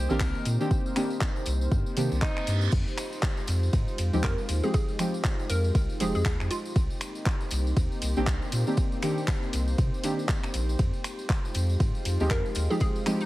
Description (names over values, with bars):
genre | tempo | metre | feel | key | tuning
deep house | 119 BPM | 4/4 | swing 59% on 16ths | F minor | A4 = 440 Hz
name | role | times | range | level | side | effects
warm tenor saxophone | melody | 0.0-2.7 s | Eb4 to Bb4 | -40 LUFS | left 1 dB | vintage 12-bit sampler grit, dub echo
dark analog pad | sustained chords | 0.0-13.3 s | Ab3 to C5 | -36 LUFS | equal | chorus, sidechain pumping
warm sub bass | bass | 0.0-12.7 s | F1 to C3 | -27 LUFS | equal | sidechain pumping
deep mellow chord stab | stabs | 0.1-13.2 s | Eb3 to G4 | -30 LUFS | equal | chorus, sidechain pumping
tambourine | percussion | 0.1-13.3 s | none | -42 LUFS | left 2 dB | none
deep house drum kit | drums | 0.2-13.2 s | crash cymbal, finger snaps, handclaps, hi-hat, ride cymbal | -36 LUFS | equal | overdrive
electronic kick drum | drums | 0.2-12.9 s | none | -27 LUFS | equal | overdrive
reverse cymbal | sound effects | 1.9-2.7 s | none | -40 LUFS | right 9 dB | none
hollow square pluck | melody | 4.2-6.8, 12.3-13.3 s | Eb4 to Bb4 | -34 LUFS | equal | chorus, ping-pong delay
room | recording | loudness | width
digital ambience | heavily compressed radio sound, vinyl crackle | -25 LUFS | side -17 dB against mid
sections
0.0-13.3 A section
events
reverse cymbal 1.9-2.7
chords
0.0 Cm7; 2.7 Fm9; 6.8 Cm7; 10.8 Fm9